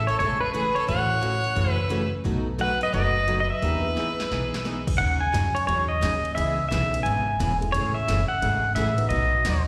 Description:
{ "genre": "country, western swing", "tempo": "175 BPM", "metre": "4/4", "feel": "swing 64% on 8ths", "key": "unclear", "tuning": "A4 = 440 Hz", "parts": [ { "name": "pedal steel guitar", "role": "melody", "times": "0.0-9.6 s", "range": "B4 to G#5", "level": "-27 LUFS", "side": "equal", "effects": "slapback echo" }, { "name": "bright fiddle", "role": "second line", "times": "0.0-4.8 s", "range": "G#4 to C#5", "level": "-33 LUFS", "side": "equal", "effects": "slapback echo" }, { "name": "dark upright piano", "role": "accompaniment", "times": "0.0-4.6, 7.6-9.4 s", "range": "F#3 to B4", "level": "-39 LUFS", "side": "equal", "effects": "slapback echo" }, { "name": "upright bass", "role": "bass", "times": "0.0-9.7 s", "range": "E1 to F#2", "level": "-29 LUFS", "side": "equal", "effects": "none" }, { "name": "punchy analog drum machine", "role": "drums", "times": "0.1-9.5 s", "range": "crash cymbal, hi-hat, kick drum, ride cymbal, snare drum", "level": "-34 LUFS", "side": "equal", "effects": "overdrive" }, { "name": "picked steel-string acoustic guitar", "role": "accompaniment", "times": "0.2-9.6 s", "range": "B2 to G#4", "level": "-34 LUFS", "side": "equal", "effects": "slapback echo" } ], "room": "light reverb, small room ambience", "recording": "live gig heard through the venue's PA, recital hall reverb", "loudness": "-24 LUFS", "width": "mono", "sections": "0.0-5.0 A section; 5.0-9.7 B section", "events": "drum fill 4.0-4.7", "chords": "0.0 Amaj7; 0.9 F#m7/A; 2.3 B7; 3.6 Emaj7; 5.0 G#7sus4; 6.4 C#m7; 7.7 Amaj7; 9.1 B" }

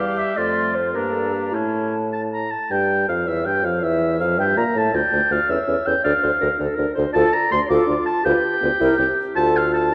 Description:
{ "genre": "quick classical-period movement for wind quintet", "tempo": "108 BPM (dotted quarters)", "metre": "6/8", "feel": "straight", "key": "D minor", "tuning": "A4 = 440 Hz", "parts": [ { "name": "hollow concert flute", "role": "melody", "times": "0.0-9.9 s", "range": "D4 to D6", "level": "-30 LUFS", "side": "equal", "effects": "none" }, { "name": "warm oboe", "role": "second line", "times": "0.0-9.9 s", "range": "C#4 to D6", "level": "-24 LUFS", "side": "equal", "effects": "none" }, { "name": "mellow French horn", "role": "accompaniment", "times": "0.0-9.9 s", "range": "E3 to F4", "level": "-28 LUFS", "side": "equal", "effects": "none" }, { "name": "warm clarinet", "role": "accompaniment", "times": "0.0-9.9 s", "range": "E4 to F5", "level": "-29 LUFS", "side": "equal", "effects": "none" }, { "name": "mellow bassoon", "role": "bass", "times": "0.0-9.9 s", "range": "C2 to Bb2", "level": "-26 LUFS", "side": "equal", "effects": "none" } ], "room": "wet scoring stage reverb, RT60 2.0 s", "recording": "dark, warm production", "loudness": "-20 LUFS", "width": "mono", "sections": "0.0-2.7 A section; 2.7-9.9 B section", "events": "none", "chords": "0.4 F; 0.9 Gm; 1.5 A; 2.7 Fsus2; 3.3 C#dim/E; 3.8 A7/E; 4.9 Dm; 5.5 A/E; 6.0 Dm; 8.2 G7/D; 8.8 C7; 9.4 Dm" }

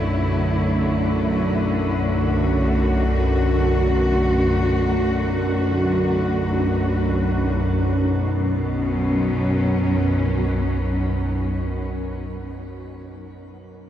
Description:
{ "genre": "dark ambient drone", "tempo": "free time", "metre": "none", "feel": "none", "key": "B minor", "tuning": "A4 = 441 Hz", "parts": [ { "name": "warm symphonic cello section", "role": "sustained chords", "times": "0.0-12.1 s", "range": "B2 to F#4", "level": "-23 LUFS", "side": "left 1 dB", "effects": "shimmer reverb" }, { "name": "organ-like drone", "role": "drone", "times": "0.0-11.8 s", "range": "B1 to F#2", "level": "-21 LUFS", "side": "equal", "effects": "ensemble chorus, built-in reverb" } ], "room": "wet huge ambient reverb, RT60 8.4 s", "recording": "in a vast, echoing space, cassette tape, nothing above 10.7 kHz", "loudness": "-18 LUFS", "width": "side -10 dB against mid", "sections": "0.0-8.2 A section; 8.2-12.0 B section", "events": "none", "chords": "0.0 Dadd9/B; 8.2 Bsus2" }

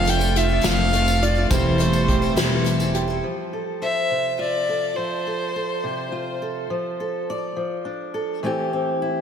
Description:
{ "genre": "indie folk with a building arrangement", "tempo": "69 BPM (dotted quarters)", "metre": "6/8", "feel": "straight", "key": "unclear", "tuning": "A4 = 440 Hz", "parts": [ { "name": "dark fiddle", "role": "melody", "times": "0.0-6.4 s", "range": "C5 to G5", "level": "-24 LUFS", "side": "left 1 dB", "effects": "ping-pong delay" }, { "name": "picked twelve-string acoustic guitar", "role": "accompaniment", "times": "0.0-3.2 s", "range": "E3 to A4", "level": "-26 LUFS", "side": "left 5 dB", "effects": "lush chorus" }, { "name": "warm grand piano", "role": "accompaniment", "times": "0.0-3.3 s", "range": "F1 to D5", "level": "-30 LUFS", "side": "right 6 dB", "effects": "analog chorus" }, { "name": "clear upright piano", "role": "arpeggios", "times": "0.0-3.2 s", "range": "F3 to G4", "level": "-26 LUFS", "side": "right 3 dB", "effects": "lush chorus, ping-pong delay" }, { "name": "upright bass", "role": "bass", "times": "0.0-3.2 s", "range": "E1 to F1", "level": "-23 LUFS", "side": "equal", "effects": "none" }, { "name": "unplugged drum kit", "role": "drums", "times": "0.1-3.1 s", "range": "hi-hat, kick drum, snare drum", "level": "-25 LUFS", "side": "equal", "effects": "none" }, { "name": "tambourine", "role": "percussion", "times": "0.2-2.9 s", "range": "none", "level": "-36 LUFS", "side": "right 3 dB", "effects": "none" }, { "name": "fingerpicked steel-string acoustic guitar", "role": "accompaniment", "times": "3.2-9.2 s", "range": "C3 to D5", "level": "-26 LUFS", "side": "equal", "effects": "none" } ], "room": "moderate lush hall reverb, RT60 2.2 s", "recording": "dreamy mix soaked in reverb", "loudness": "-20 LUFS", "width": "side -8 dB against mid", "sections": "0.0-3.2 A section; 3.2-9.2 B section", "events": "none", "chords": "0.0 Dm/F; 1.5 Am7/E; 3.2 F; 6.7 Dm/F; 8.4 Am7/E" }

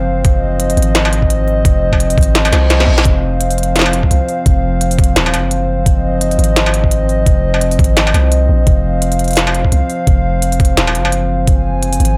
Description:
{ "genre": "half-time drum and bass", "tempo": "171 BPM", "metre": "4/4", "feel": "swing 57% on 16ths, half-time", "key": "F phrygian", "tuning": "A4 = 440 Hz", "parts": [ { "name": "dark analog pad", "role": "sustained chords", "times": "0.0-12.2 s", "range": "F3 to Ab5", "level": "-20 LUFS", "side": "equal", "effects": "chorus, sidechain pumping" }, { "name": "long sustained 808-style bass", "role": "bass", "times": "0.0-12.2 s", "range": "Eb1 to C2", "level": "-17 LUFS", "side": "equal", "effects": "none" }, { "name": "electronic kick drum", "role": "drums", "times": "0.2-11.6 s", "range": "none", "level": "-15 LUFS", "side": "equal", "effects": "none" }, { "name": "industrial drum kit", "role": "drums", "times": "0.2-12.1 s", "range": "hi-hat, snare drum, struck metal", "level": "-19 LUFS", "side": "equal", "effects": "none" }, { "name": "reverse cymbal", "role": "sound effects", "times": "2.6-3.1 s", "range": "none", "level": "-26 LUFS", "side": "equal", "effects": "none" } ], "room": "light reverb", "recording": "none", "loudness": "-13 LUFS", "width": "mono", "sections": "0.0-12.2 A section", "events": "reverse cymbal 2.6-3.1; drum fill 2.5-3.1", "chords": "0.0 F5" }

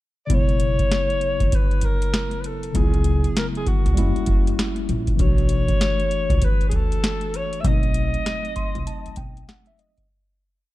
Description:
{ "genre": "hip hop, jazz-hop", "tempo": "98 BPM", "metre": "4/4", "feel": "swing 61% on 16ths", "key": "E dorian", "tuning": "A4 = 440 Hz", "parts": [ { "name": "breathy alto saxophone", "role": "melody", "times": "0.3-9.5 s", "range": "F#4 to E5", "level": "-27 LUFS", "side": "left 2 dB", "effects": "analog delay" }, { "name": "tine electric piano", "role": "accompaniment", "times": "0.3-10.1 s", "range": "C#3 to C6", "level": "-28 LUFS", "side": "left 1 dB", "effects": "medium stereo tremolo" }, { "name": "upright bass", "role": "bass", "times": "0.3-9.4 s", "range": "E1 to D2", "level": "-24 LUFS", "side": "equal", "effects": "none" }, { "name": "booming analog drum machine", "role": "drums", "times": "0.3-10.1 s", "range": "hi-hat, kick drum, snare drum", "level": "-21 LUFS", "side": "equal", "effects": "none" } ], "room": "studio reverb", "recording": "dark, warm production", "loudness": "-18 LUFS", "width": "side -16 dB against mid", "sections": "0.0-0.3 pickup bar; 0.3-10.1 head", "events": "fade-out 7.6-10.1; tine electric piano fill 8.3-10.1", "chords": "0.3 Esus2; 2.7 C#m7; 4.0 F#7b9; 5.2 Bm11; 7.6 B7b9" }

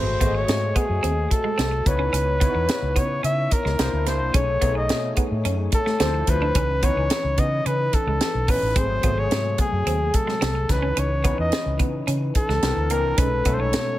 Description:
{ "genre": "polished 1980s jazz-funk pop", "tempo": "109 BPM", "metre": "4/4", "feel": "straight", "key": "C# minor", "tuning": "A4 = 440 Hz", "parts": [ { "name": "warm flugelhorn", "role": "melody", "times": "0.0-14.0 s", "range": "G#4 to E5", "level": "-25 LUFS", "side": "equal", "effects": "none" }, { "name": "overdriven tine electric piano", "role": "accompaniment", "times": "0.0-14.0 s", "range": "B#2 to D#5", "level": "-29 LUFS", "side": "left 3 dB", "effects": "ensemble chorus" }, { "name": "clean electric guitar", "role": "riff", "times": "0.0-13.6 s", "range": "G#3 to D4", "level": "-31 LUFS", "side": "right 4 dB", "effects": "analog chorus" }, { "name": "vintage muted fingered electric bass", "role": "bass", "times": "0.0-14.0 s", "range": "G#1 to C#3", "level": "-25 LUFS", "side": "equal", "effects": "none" }, { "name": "crisp fusion drum kit", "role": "drums", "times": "0.2-13.9 s", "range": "hi-hat, kick drum, snare drum", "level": "-24 LUFS", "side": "equal", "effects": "none" } ], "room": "studio ambience", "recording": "none", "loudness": "-19 LUFS", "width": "side -14 dB against mid", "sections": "0.0-14.0 A section", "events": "none", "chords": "0.0 G#7b9; 1.9 C#m9; 3.8 C9; 4.3 B13; 6.0 Dm9; 6.6 C#m9; 8.8 G#7b9; 10.7 C#m9; 12.6 C9; 13.2 B13" }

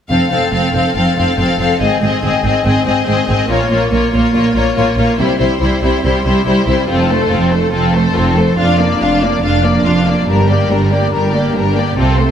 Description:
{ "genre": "cinematic", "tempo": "142 BPM", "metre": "4/4", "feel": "straight", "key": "F major", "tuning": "A4 = 440 Hz", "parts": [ { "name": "warm symphonic violin section", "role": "melody", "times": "0.1-12.3 s", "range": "A4 to F5", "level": "-18 LUFS", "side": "left 4 dB", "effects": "none" }, { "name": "warm symphonic violin section", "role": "second line", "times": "0.1-12.3 s", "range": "D4 to A4", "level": "-20 LUFS", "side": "left 3 dB", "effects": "none" }, { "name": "rich symphonic viola section", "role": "accompaniment", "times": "0.1-12.3 s", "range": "G3 to D4", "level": "-17 LUFS", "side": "equal", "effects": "none" }, { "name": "rich symphonic cello section", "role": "bass", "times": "0.1-12.3 s", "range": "F2 to C3", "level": "-18 LUFS", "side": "right 2 dB", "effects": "none" }, { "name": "rich symphonic double bass section", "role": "bass", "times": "0.1-12.3 s", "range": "F1 to C2", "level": "-18 LUFS", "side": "right 2 dB", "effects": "none" } ], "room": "wet scoring stage reverb, RT60 1.5 s", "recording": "none", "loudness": "-11 LUFS", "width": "side -8 dB against mid", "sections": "0.1-12.3 A section", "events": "build-up 0.1-12.3", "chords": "0.1 F; 1.8 Ab; 3.5 Bbm; 5.2 C; 6.9 F; 8.6 Bb/F; 10.3 Gm" }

